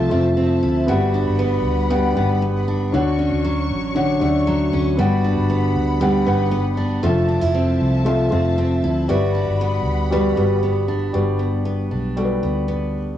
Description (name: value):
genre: acoustic pop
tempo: 117 BPM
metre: 4/4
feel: straight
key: unclear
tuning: A4 = 441 Hz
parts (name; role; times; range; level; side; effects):
- felt-muted upright piano; accompaniment; 0.0-13.2 s; G3 to F#5; -22 LUFS; left 2 dB; cassette tape
- picked steel-string acoustic guitar; accompaniment; 0.0-13.2 s; D3 to A4; -22 LUFS; right 2 dB; cassette tape
- warm studio string section; sustained chords; 0.0-11.1 s; F3 to C#6; -29 LUFS; left 1 dB; cassette tape
- vintage muted fingered electric bass; bass; 0.0-13.2 s; F1 to D2; -22 LUFS; equal; none
room: light reverb, small room ambience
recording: home recording on cassette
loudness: -17 LUFS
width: side -11 dB against mid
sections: 0.0-11.1 A section; 11.1-13.2 B section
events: none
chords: 0.0 Fmaj7; 0.9 Gmaj7; 2.9 Dmaj7; 5.0 Gmaj7; 7.0 Fmaj7; 9.1 Gmaj7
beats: 0.37 | 0.89 1.40 1.91 2.42 | 2.94 3.45 3.96 4.47 | 4.99 5.50 6.01 6.53 | 7.04 7.55 8.06 8.58 | 9.09 9.60 10.12 10.63 | 11.14 11.66 12.17 12.69